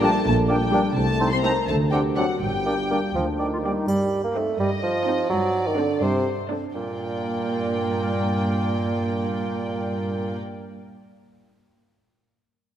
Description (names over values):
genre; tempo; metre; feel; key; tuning
cinematic, playful, whimsical film cue; 84 BPM (dotted quarters); 6/8; straight; G minor; A4 = 440 Hz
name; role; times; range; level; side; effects
marimba with soft mallets; melody; 0.0-3.1 s; F#4 to C5; -29 LUFS; left 3 dB; none
warm studio violin section; melody; 0.0-10.4 s; C5 to C6; -31 LUFS; left 3 dB; none
concert flute; second line; 0.0-3.7 s; F#5 to A5; -33 LUFS; left 1 dB; none
mellow cor anglais; second line; 0.0-3.7 s; C5 to D5; -33 LUFS; right 2 dB; none
warm clarinet; second line; 0.0-3.9 s; D4 to F4; -31 LUFS; left 1 dB; none
warm studio violin section; second line; 0.0-10.4 s; G4 to C6; -34 LUFS; left 2 dB; none
warm bassoon; accompaniment; 0.0-10.4 s; Bb2 to C4; -26 LUFS; right 2 dB; none
warm studio viola section; accompaniment; 0.0-10.4 s; F#3 to Eb4; -30 LUFS; right 1 dB; none
warm French horn section; sustained chords; 0.0-3.1 s; F#3 to C4; -30 LUFS; left 3 dB; none
mellow tuba; bass; 0.0-3.7 s; G1 to D2; -28 LUFS; right 2 dB; none
warm chamber double bass section; bass; 0.0-3.7 s; G1 to D2; -30 LUFS; right 2 dB; none
warm studio cello section; bass; 0.0-10.4 s; D2 to D3; -29 LUFS; right 1 dB; none
triangle; percussion; 3.9-4.8 s; none; -47 LUFS; left 3 dB; none
room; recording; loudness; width
wet concert hall reverb, RT60 2.1 s; none; -21 LUFS; side -10 dB against mid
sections
0.0-3.9 A section; 3.9-6.7 B section; 6.7-9.6 C section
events
none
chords
0.0 Gm/Bb; 1.0 Adim/C; 1.7 D7; 2.4 Gm; 3.9 Cm/G; 5.3 D5/G; 6.7 Gm